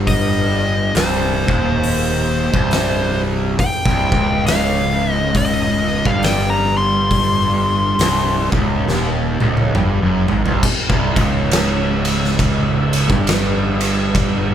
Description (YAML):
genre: stoner and doom metal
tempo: 68 BPM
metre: 4/4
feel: swing 61% on 8ths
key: C phrygian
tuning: A4 = 440 Hz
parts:
  - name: fuzz guitar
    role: riff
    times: 0.0-14.5 s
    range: C2 to Ab2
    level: -18 LUFS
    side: right 1 dB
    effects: distortion
  - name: fuzz fingered electric bass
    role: bass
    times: 0.0-14.5 s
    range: C1 to Ab1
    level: -23 LUFS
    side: left 1 dB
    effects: overdrive
  - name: fuzz lead guitar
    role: melody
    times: 0.1-8.5 s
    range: C5 to C6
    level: -20 LUFS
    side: left 1 dB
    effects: distortion
  - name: oversized low-tuned drum kit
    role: drums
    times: 0.1-14.4 s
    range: crash cymbal, hi-hat, kick drum, ride cymbal, snare drum, toms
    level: -19 LUFS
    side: equal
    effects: none
room: light reverb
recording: band playing live in one room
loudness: -14 LUFS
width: side -9 dB against mid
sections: 0.0-10.6 A section; 10.6-14.5 B section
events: drum fill 8.9-10.6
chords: 0.0 Cm; 10.6 C5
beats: | 0.08 0.95 1.83 2.71 | 3.59 4.47 5.35 6.23 | 7.11 7.99 8.87 9.75 | 10.63 11.51 12.39 13.27 | 14.15